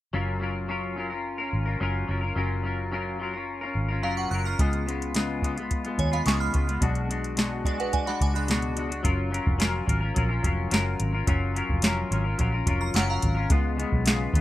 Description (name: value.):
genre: indie pop, bedroom pop.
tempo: 108 BPM.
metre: 4/4.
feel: straight.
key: F# major.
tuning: A4 = 440 Hz.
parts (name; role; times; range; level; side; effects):
clean electric guitar; accompaniment; 0.1-14.4 s; B2 to A#4; -29 LUFS; left 3 dB; lush chorus, warbly pitch drift.
vintage muted fingered electric bass; bass; 0.1-14.4 s; E#1 to D#2; -28 LUFS; equal; none.
glassy synth bell; second line; 4.0-9.0, 12.8-13.5 s; B4 to F#6; -31 LUFS; right 4 dB; phaser, analog chorus, slapback echo.
soft vintage rhythm box; drums; 4.6-14.4 s; hi-hat, kick drum, snare drum; -26 LUFS; equal; none.
room: digital ambience.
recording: rough home demo mix.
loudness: -24 LUFS.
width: side -14 dB against mid.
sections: 0.1-9.0 A section; 9.0-14.4 B section.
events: none.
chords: 0.1 F#maj7; 4.6 C#7; 6.8 Bm6; 9.0 F#maj7; 13.5 C#7.